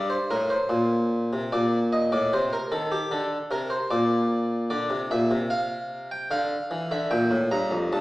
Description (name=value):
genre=classical, baroque-style two-part invention for harpsichord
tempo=75 BPM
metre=3/4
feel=straight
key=unclear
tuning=A4 = 440 Hz
part: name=harpsichord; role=solo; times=0.0-8.0 s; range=F2 to Bb5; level=-23 LUFS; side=equal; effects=none
room=wet recital hall reverb, RT60 1.3 s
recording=heard from further back in the room, small speaker sound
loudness=-23 LUFS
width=side -18 dB against mid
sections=0.0-8.0 A section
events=none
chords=0.0 N.C.; 1.5 Bbmaj7; 2.3 Cm; 3.9 Bb; 4.7 Dm; 7.1 Gm